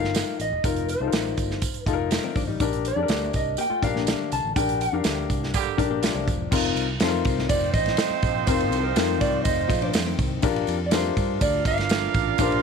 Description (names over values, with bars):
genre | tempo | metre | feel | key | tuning
uptempo 1960s-style soul | 123 BPM | 4/4 | straight | F mixolydian | A4 = 439 Hz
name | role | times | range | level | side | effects
mellow electric guitar | melody | 0.0-12.6 s | A4 to A5 | -28 LUFS | right 1 dB | none
warm upright piano | accompaniment | 0.0-12.6 s | C4 to Bb4 | -27 LUFS | left 12 dB | none
fingered electric bass | bass | 0.0-12.6 s | E1 to G2 | -30 LUFS | right 1 dB | tube saturation
natural country drum kit | drums | 0.0-12.6 s | crash cymbal, hi-hat, kick drum, ride cymbal, snare drum | -26 LUFS | right 2 dB | none
tambourine | percussion | 0.1-12.5 s | none | -38 LUFS | right 17 dB | none
hollow-body jazz guitar | riff | 2.2-6.5, 9.7-10.4 s | D3 to G4 | -32 LUFS | left 11 dB | none
clear horn section | second line | 5.5-12.6 s | D3 to F5 | -28 LUFS | right 14 dB | none
room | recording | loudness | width
light reverb, small room reverb | 1960s-style stereo with parts hard left and right | -21 LUFS | side -6 dB against mid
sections
0.0-6.5 A section; 6.5-12.6 B section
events
band accent 4.6-6.5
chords
0.0 F7sus4; 10.4 Bb6